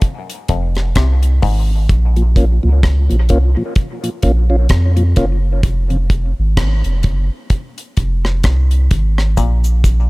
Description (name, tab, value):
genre	dub reggae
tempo	64 BPM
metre	4/4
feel	swing 57% on 16ths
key	unclear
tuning	A4 = 440 Hz
part	deep reggae drum kit	drums	0.0-10.1 s	hi-hat, kick drum, rim click	-16 LUFS	equal	none
part	muted clav	riff	0.5-1.7, 9.4-9.7 s	F2 to C3	-26 LUFS	left 6 dB	overdrive, dub echo
part	soft dub sub bass	bass	0.5-10.1 s	F1 to F2	-13 LUFS	equal	none
part	mellow tonewheel organ	accompaniment	2.2-6.0 s	F2 to F4	-21 LUFS	equal	slow rotary speaker, dub echo
part	cabasa	percussion	9.4-10.1 s	none	-33 LUFS	right 2 dB	none
room	small room ambience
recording	echo-heavy mix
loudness	-12 LUFS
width	side -23 dB against mid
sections	0.0-10.1 A section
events	break 0.0-1.9; part muted 1.9-9.4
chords	0.0 Fm; 1.9 Bbm; 5.6 Fm; 9.4 N.C.